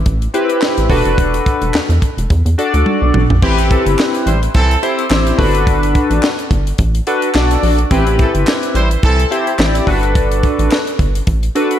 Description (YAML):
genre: early-eighties boogie funk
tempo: 107 BPM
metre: 4/4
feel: swing 56% on 16ths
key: A dorian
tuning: A4 = 441 Hz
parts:
  - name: rubbery square bass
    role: bass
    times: 0.0-11.5 s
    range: E1 to E2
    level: -15 LUFS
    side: equal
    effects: none
  - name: tight funk drum kit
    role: drums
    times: 0.1-11.8 s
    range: crash cymbal, handclaps, hi-hat, kick drum, snare drum, toms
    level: -17 LUFS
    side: equal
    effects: none
  - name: chorused polysynth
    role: accompaniment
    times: 0.3-11.8 s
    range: C4 to D5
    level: -16 LUFS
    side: left 1 dB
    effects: none
  - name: clear horn section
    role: second line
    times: 3.4-9.3 s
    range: E3 to C5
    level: -20 LUFS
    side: right 2 dB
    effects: none
room: moderate lush hall reverb, RT60 1.8 s, small room reverb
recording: dreamy mix soaked in reverb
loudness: -12 LUFS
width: side -10 dB against mid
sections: 0.0-3.4 A section; 3.4-11.8 B section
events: drum fill 2.9-3.4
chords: 0.0 Am9; 0.9 E9sus4; 3.4 Am9; 5.4 Gmaj9; 7.9 Am9; 9.9 Gmaj9